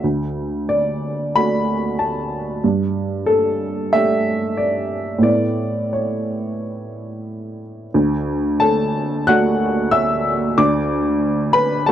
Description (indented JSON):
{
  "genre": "neoclassical minimalist piano",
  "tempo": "91 BPM",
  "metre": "4/4",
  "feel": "rubato",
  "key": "D major",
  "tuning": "A4 = 439 Hz",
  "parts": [
    { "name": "warm upright piano", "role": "solo", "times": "0.0-11.9 s", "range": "D2 to F#6", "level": "-17 LUFS", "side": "equal", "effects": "none" }
  ],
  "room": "light reverb",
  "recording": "dry, close 1970s-style studio recording",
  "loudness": "-17 LUFS",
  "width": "side -10 dB against mid",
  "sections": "0.0-7.9 A section; 7.9-11.9 B section",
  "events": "none",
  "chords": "0.0 D; 2.6 Gsus2; 5.2 Aadd9; 7.9 D",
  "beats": "| 0.02 0.67 1.34 1.99 | 2.62 3.26 3.93 4.58 | 5.25 5.93 6.60 7.27 | 7.93 8.59 9.28 9.93 | 10.58 11.22 11.86"
}